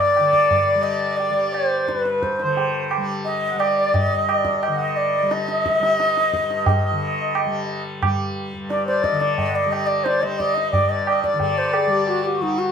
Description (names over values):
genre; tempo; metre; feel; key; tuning
indian classical, Hindustani; 88 BPM; 4/4; straight; unclear; A4 = 439 Hz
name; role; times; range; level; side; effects
bansuri; melody; 0.0-12.7 s; Eb4 to Eb5; -20 LUFS; equal; none
pedal harmonium; second line; 0.0-12.7 s; F#4 to F#5; -24 LUFS; left 2 dB; none
tanpura; drone; 0.0-12.7 s; G2 to G3; -28 LUFS; left 2 dB; none
tabla; percussion; 0.2-12.3 s; none; -25 LUFS; right 3 dB; none
room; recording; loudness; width
moderate stone room reverb, RT60 1.0 s; band playing live in one room; -18 LUFS; side -7 dB against mid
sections
0.0-12.7 A section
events
speeding up 0.0-12.7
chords
none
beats
0.51 | 1.20 1.89 2.58 3.26 | 3.95 4.63 5.32 6.00 | 6.68 7.36 8.04 8.71 | 9.39 10.06 10.73 11.40 | 12.07